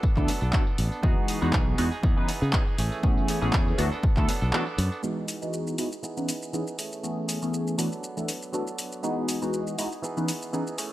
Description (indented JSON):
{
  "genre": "filtered disco house",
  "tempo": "120 BPM",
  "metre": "4/4",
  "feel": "swing 55% on 16ths",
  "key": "E major",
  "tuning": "A4 = 440 Hz",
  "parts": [
    { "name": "direct-recorded clean electric guitar", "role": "riff", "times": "0.0-10.9 s", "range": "E3 to A4", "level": "-35 LUFS", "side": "right 3 dB", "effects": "harmonic tremolo, sidechain pumping, low-pass filter" },
    { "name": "electronic kick drum", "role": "drums", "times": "0.0-4.3 s", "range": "none", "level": "-24 LUFS", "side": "equal", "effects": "none" },
    { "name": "tambourine", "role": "percussion", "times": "0.0-5.0 s", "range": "none", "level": "-46 LUFS", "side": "left 1 dB", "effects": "none" },
    { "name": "funky polysynth comp", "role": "accompaniment", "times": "0.2-10.6 s", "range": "E3 to B4", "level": "-30 LUFS", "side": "equal", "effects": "chorus, phaser, sidechain pumping, low-pass filter" },
    { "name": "modern bright fingered electric bass", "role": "bass", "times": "0.2-4.9 s", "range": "A1 to C#3", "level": "-26 LUFS", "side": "equal", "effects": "sidechain pumping, low-pass filter" },
    { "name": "punchy analog drum machine", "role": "drums", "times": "0.2-10.9 s", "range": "handclaps, hi-hat, shaker", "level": "-32 LUFS", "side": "equal", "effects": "sidechain pumping on hats, sidechain pumping on perc" }
  ],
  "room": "little or no reverb",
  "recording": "none",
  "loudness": "-24 LUFS",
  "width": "side -15 dB against mid",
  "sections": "0.0-5.0 A section; 5.0-10.9 B section",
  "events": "break 4.5-5.0",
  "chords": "0.0 D6; 1.0 Emaj7; 2.0 C#m9/E; 2.8 Amaj7; 3.8 D6; 5.0 Emaj7; 6.0 C#m9/E; 6.8 Amaj7; 7.8 D6; 9.0 Emaj7; 10.0 C#m9/E"
}